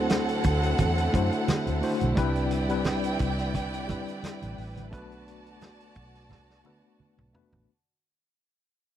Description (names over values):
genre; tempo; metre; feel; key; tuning
lush 1970s-style soul; 87 BPM; 4/4; swing 54% on 16ths; unclear; A4 = 440 Hz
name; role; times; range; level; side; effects
rich studio violin section; second line; 0.0-7.7 s; C4 to A5; -32 LUFS; right 2 dB; none
tine electric piano; accompaniment; 0.0-7.7 s; G3 to C5; -30 LUFS; left 2 dB; medium stereo tremolo
warm studio string section; sustained chords; 0.0-7.7 s; D3 to B4; -38 LUFS; right 1 dB; none
vintage muted fingered electric bass; bass; 0.0-7.7 s; A1 to F#2; -30 LUFS; equal; none
warm soul drum kit; drums; 0.1-7.7 s; hi-hat, kick drum, snare drum, toms; -30 LUFS; equal; none
congas; percussion; 0.1-7.7 s; none; -34 LUFS; right 5 dB; none
room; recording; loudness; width
little or no reverb; dry, close 1970s-style studio recording; -24 LUFS; side -11 dB against mid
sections
0.0-7.7 A section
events
fade-out 0.0-7.7; drum fill 6.3-7.7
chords
0.0 D9; 2.2 Cmaj9; 4.9 Bm7